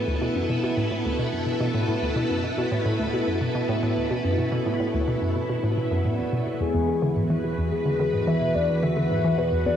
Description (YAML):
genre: ambient, sequencer-driven space music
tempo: 108 BPM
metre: 4/4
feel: straight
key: unclear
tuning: A4 = 438 Hz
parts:
  - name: string machine, full ensemble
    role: sustained chords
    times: 0.0-9.8 s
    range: E2 to B4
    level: -27 LUFS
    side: equal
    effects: ensemble chorus, cassette tape
  - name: vibraphone with soft mallets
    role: arpeggios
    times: 0.0-9.8 s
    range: B3 to B5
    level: -31 LUFS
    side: right 5 dB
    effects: auto-pan, low-pass filter, cassette tape, plate reverb, ping-pong delay
  - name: wind-like tuned noise texture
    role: texture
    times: 0.0-9.8 s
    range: B3 to C#6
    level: -44 LUFS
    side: right 2 dB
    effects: none
  - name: hollow square pluck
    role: riff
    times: 0.1-9.8 s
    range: D2 to E3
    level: -26 LUFS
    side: equal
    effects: chorus, cassette tape, ping-pong delay
  - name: soft octave-layered synth lead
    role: melody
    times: 6.6-9.8 s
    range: G#4 to E5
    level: -26 LUFS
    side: left 5 dB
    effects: chorus, cassette tape, plate reverb, ping-pong delay
room: wet studio reverb, RT60 0.7 s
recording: home recording on cassette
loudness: -22 LUFS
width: side -9 dB against mid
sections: 0.0-9.8 A section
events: none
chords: 0.0 Bm; 6.6 E